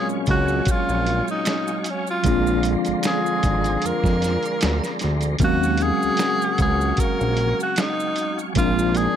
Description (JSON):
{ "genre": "R&B, neo-soul", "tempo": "76 BPM", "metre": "4/4", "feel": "swing 54% on 16ths", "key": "Eb dorian", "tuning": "A4 = 441 Hz", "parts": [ { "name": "warm tenor saxophone", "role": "melody", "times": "0.0-9.2 s", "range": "Db4 to Bb4", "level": "-24 LUFS", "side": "equal", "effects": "plate reverb" }, { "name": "mellow tine electric piano", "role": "accompaniment", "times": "0.0-9.2 s", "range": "F3 to F5", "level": "-25 LUFS", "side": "right 1 dB", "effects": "medium stereo tremolo, plate reverb" }, { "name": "tonewheel organ", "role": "sustained chords", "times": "0.0-9.2 s", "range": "Gb3 to Db6", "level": "-32 LUFS", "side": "equal", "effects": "slow rotary speaker, chorus vibrato" }, { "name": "warm trombone section", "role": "stabs", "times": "0.0-9.2 s", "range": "Ab2 to Gb4", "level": "-29 LUFS", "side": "left 4 dB", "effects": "plate reverb" }, { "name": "maracas and finger snaps", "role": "percussion", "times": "0.1-9.2 s", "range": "none", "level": "-36 LUFS", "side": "right 12 dB", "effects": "none" }, { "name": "fat analog bass", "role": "bass", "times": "0.3-9.1 s", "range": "Ab1 to F2", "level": "-23 LUFS", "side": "equal", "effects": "none" }, { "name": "dusty soul sampler-style drum kit", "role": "drums", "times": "0.3-9.2 s", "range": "hi-hat, kick drum, snare drum", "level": "-24 LUFS", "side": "equal", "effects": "none" } ], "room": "light reverb", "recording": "none", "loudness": "-19 LUFS", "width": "side -9 dB against mid", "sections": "0.0-9.2 A section", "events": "none", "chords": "0.0 Ebm11; 2.2 Bb9; 5.4 Ebm11; 8.6 Bb9" }